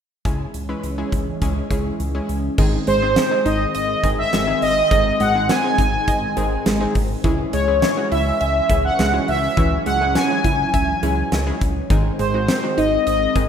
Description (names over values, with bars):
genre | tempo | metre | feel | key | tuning
synth-pop | 103 BPM | 4/4 | straight | unclear | A4 = 440 Hz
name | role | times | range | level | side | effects
analog pluck | accompaniment | 0.3-13.5 s | G#3 to B4 | -29 LUFS | left 2 dB | chorus
lush unison pad | sustained chords | 0.3-13.5 s | D#3 to C#4 | -27 LUFS | equal | chorus, phaser
chorused synth bass | bass | 0.3-13.5 s | G#1 to C#2 | -24 LUFS | equal | none
huge arena drum kit | drums | 0.3-13.5 s | crash cymbal, hi-hat, kick drum, snare drum | -23 LUFS | equal | none
wide unison pluck | arpeggios | 2.6-13.5 s | D#3 to E5 | -25 LUFS | right 1 dB | none
analog synth brass | melody | 2.9-13.5 s | B#4 to G#5 | -19 LUFS | equal | chorus
room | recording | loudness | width
moderate digital room reverb, RT60 1.3 s, small room ambience | rough home demo mix | -17 LUFS | side -8 dB against mid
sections
0.3-2.6 A section; 2.6-13.5 B section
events
none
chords
0.3 C#m; 2.6 G#; 7.2 C#m; 11.9 G#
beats
| 0.25 0.83 1.42 2.00 | 2.58 3.17 3.75 4.33 | 4.91 5.50 6.08 6.66 | 7.24 7.83 8.41 8.99 | 9.57 10.15 10.74 11.32 | 11.90 12.48 13.07